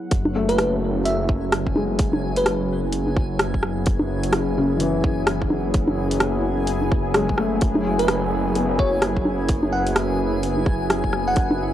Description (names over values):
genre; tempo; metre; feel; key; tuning
future garage; 128 BPM; 4/4; swing 61% on 16ths; unclear; A4 = 440 Hz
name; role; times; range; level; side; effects
felt-muted upright piano; accompaniment; 0.0-11.7 s; C#3 to B3; -27 LUFS; left 3 dB; vintage 12-bit sampler grit, sidechain pumping, analog delay
warbly tape-like pad; sustained chords; 0.0-11.7 s; F#3 to G#4; -28 LUFS; equal; chorus, built-in reverb, sidechain pumping
swelling detuned saw bass; bass; 0.1-11.7 s; F#1; -24 LUFS; equal; tube saturation, sidechain pumping
electronic kick drum; drums; 0.1-11.5 s; none; -21 LUFS; equal; none
garage drum kit; drums; 0.1-11.6 s; bongos, hi-hat, rim click; -23 LUFS; equal; none
backwards swelling texture; texture; 0.1-11.7 s; G#5; -33 LUFS; left 3 dB; built-in reverb
bell-like FM electric piano; melody; 0.5-2.8, 8.0-11.6 s; B4 to F#5; -26 LUFS; equal; chorus, analog delay
room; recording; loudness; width
little or no reverb; dry, gritty hardware recording; -19 LUFS; side -12 dB against mid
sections
0.1-11.7 A section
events
none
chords
0.1 F#m7; 7.6 F#m11